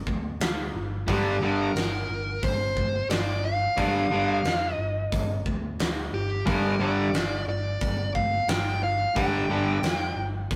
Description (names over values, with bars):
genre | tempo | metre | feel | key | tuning
hard rock | 89 BPM | 4/4 | straight | G minor | A4 = 442 Hz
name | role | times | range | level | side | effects
overdriven picked electric bass | bass | 0.1-10.6 s | G1 to F2 | -34 LUFS | equal | none
huge arena drum kit | drums | 0.1-10.6 s | hi-hat, kick drum, snare drum | -32 LUFS | equal | none
dark smooth lead guitar | melody | 1.1-10.5 s | G4 to G5 | -31 LUFS | equal | overdrive
overdriven electric guitar | riff | 1.1-9.8 s | G2 to G3 | -30 LUFS | equal | none
overdriven semi-hollow guitar | riff | 1.1-9.8 s | G2 to G3 | -30 LUFS | equal | none
room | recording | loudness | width
moderate studio ambience, RT60 0.5 s | rough rehearsal-room recording, warm saturation | -26 LUFS | mono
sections
0.0-10.6 A section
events
none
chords
0.0 G5